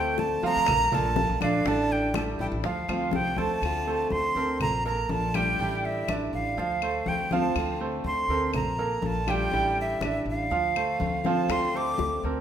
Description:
latin, Cuban son and guajira; 122 BPM; 4/4; straight; D minor; A4 = 440 Hz
breathy bright jazz flute; melody; 0.0-12.2 s; E5 to D6; -28 LUFS; right 2 dB
picked steel-string acoustic guitar; accompaniment; 0.0-12.4 s; D3 to F4; -33 LUFS; left 4 dB
bright grand piano; arpeggios; 0.0-12.4 s; D3 to G5; -30 LUFS; right 5 dB
upright bass; bass; 0.0-12.4 s; A1 to D2; -33 LUFS; left 1 dB
bongos; percussion; 0.2-3.6, 11.5-12.4 s; -36 LUFS; left 8 dB
congas; percussion; 0.2-12.4 s; -34 LUFS; left 3 dB
claves; percussion; 0.7-11.7 s; -38 LUFS; left 6 dB
wet large studio reverb, RT60 1.3 s; minimal, uncompressed stereo recording; -24 LUFS; side -9 dB against mid
0.0-3.6 A section; 3.6-12.4 B section
0.0 Dm7; 0.7 Bbmaj7; 1.7 A7sus4; 2.6 Dm7; 4.6 Bbmaj7; 5.6 A7sus4; 6.6 Dm7; 8.5 Bbmaj7; 9.5 A7sus4; 10.5 Dm7

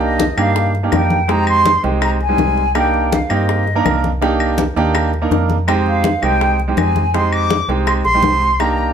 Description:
Afro-Cuban jazz; 164 BPM; 4/4; straight; A4 = 439 Hz
concert flute; melody; 0.0-8.9 s; Eb5 to D6; -17 LUFS; equal; slapback echo
clear baby grand piano; accompaniment; 0.0-8.9 s; G3 to Bb4; -18 LUFS; right 4 dB
metallic FM bass; bass; 0.0-8.9 s; Bb1 to G2; -19 LUFS; equal
congas; percussion; 0.0-8.9 s; -24 LUFS; left 3 dB
bongos; percussion; 0.2-8.8 s; -23 LUFS; left 9 dB
claves; percussion; 0.4-8.8 s; -26 LUFS; left 3 dB
moderate studio reverb, RT60 0.6 s; -13 LUFS; side -8 dB against mid
0.0-8.9 A section
0.0 Cm7; 1.3 Fm7; 2.8 Cm7; 5.7 Fm7

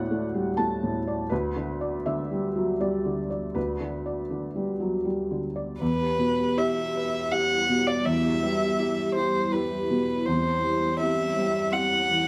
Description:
neoclassical piano and strings; 81 BPM; 3/4; rubato; E minor; A4 = 438 Hz
felt-muted upright piano; accompaniment; 0.0-12.3 s; D2 to A5; -29 LUFS; equal
dark violin; melody; 5.8-12.3 s; B4 to F#5; -28 LUFS; equal
granular cloud pad; sustained chords; 7.3-12.3 s; G3 to E5; -37 LUFS; equal; built-in reverb
marimba with medium mallets; arpeggios; 5.8-12.2 s; C4 to E5; -36 LUFS; equal
moderate studio reverb, RT60 0.9 s; band playing live in one room; -26 LUFS; mono
0.0-5.8 A section; 5.8-12.3 A section
0.0 D; 1.3 G/D; 5.8 Em; 10.3 C/E

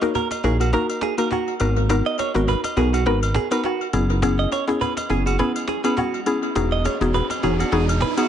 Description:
afrobeats; 103 BPM; 4/4; swing 55% on 16ths; G# minor; A4 = 440 Hz
mallet-like synth pluck; accompaniment; 0.0-8.3 s; A#3 to A#4; -22 LUFS; left 2 dB; chorus, tape echo
cajon; drums; 0.0-8.2 s; -31 LUFS; right 1 dB; vintage 12-bit sampler grit
direct-recorded clean electric guitar; riff; 0.2-8.3 s; F#4 to D#5; -26 LUFS; right 7 dB; tape echo
agogo bells and woodblock; percussion; 0.3-8.3 s; -30 LUFS; left 2 dB; tape echo
fat analog bass; bass; 0.4-8.0 s; E1 to B1; -21 LUFS; equal
riser; sound effects; 5.7-8.3 s; -32 LUFS; right 3 dB
light reverb, small room ambience; echo-heavy mix, nothing above 10.5 kHz; -19 LUFS; side -9 dB against mid
0.0-8.3 A section
riser 5.7-8.3
0.0 D#m; 1.6 G#m7; 3.9 F#7sus4; 6.6 Emaj7

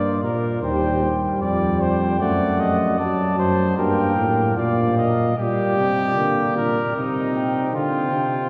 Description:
classical, imitative canzona for brass ensemble; 76 BPM; 4/4; straight; G minor from 5.4 s; A4 = 440 Hz
dark trumpet; melody; 0.0-8.5 s; D5 to A5; -28 LUFS; equal
clear flugelhorn; second line; 0.0-8.5 s; Eb4 to Eb5; -27 LUFS; equal
mellow trombone; accompaniment; 0.0-8.5 s; F#3 to C4; -27 LUFS; equal
dark bass trombone; bass; 0.0-8.5 s; Eb2 to D3; -25 LUFS; equal
wet cathedral reverb, RT60 5.5 s; heard from further back in the room; -21 LUFS; mono
0.0-5.4 A section; 5.4-8.5 B section
0.0 Gm; 0.6 Cm/Eb; 2.2 D/F#; 3.8 Gm; 5.4 Gm/Bb; 7.0 Cm

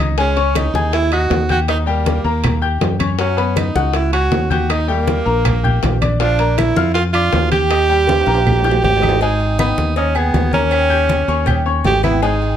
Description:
latin, salsa; 159 BPM; 4/4; straight; A4 = 440 Hz
bright upright piano; accompaniment; 0.0-12.5 s; E#3 to G#6; -21 LUFS; left 6 dB
fingered electric bass; bass; 0.0-12.6 s; G#1 to F#2; -18 LUFS; equal
clear tenor saxophone; melody; 0.2-12.6 s; A#3 to G4; -18 LUFS; right 3 dB; plate reverb
bongos and cowbell; percussion; 0.2-12.4 s; -26 LUFS; left 7 dB
congas; percussion; 0.2-12.6 s; -22 LUFS; left 1 dB
timbales and agogo bells; percussion; 0.2-12.6 s; -25 LUFS; right 3 dB
claves; percussion; 0.6-12.2 s; -29 LUFS; right 10 dB
moderate studio ambience, RT60 0.5 s; faint mains hum; -13 LUFS; side -9 dB against mid
0.0-9.2 A section; 9.2-12.6 B section
drum fill 8.1-9.2
0.2 C#sus2; 1.7 D#; 3.2 F#sus4; 4.7 D#; 6.2 A#; 7.7 D#; 9.2 G#m; 10.7 D#7

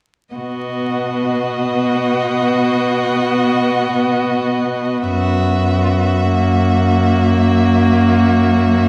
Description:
classical, slow romantic movement for string quartet; free time; B major; A4 = 441 Hz
clear viola; accompaniment; 0.3-8.9 s; A#3 to B3; -20 LUFS; equal
clear violin; melody; 0.4-8.9 s; D#5 to E5; -27 LUFS; equal
rich violin; second line; 0.4-8.9 s; F#4; -23 LUFS; equal
rich cello; bass; 0.4-8.9 s; F#2 to B2; -20 LUFS; equal
moderate concert hall reverb, RT60 2.2 s; dark, warm production, vinyl crackle; -16 LUFS; mono
0.4-8.9 A section
0.4 B; 5.1 F#7

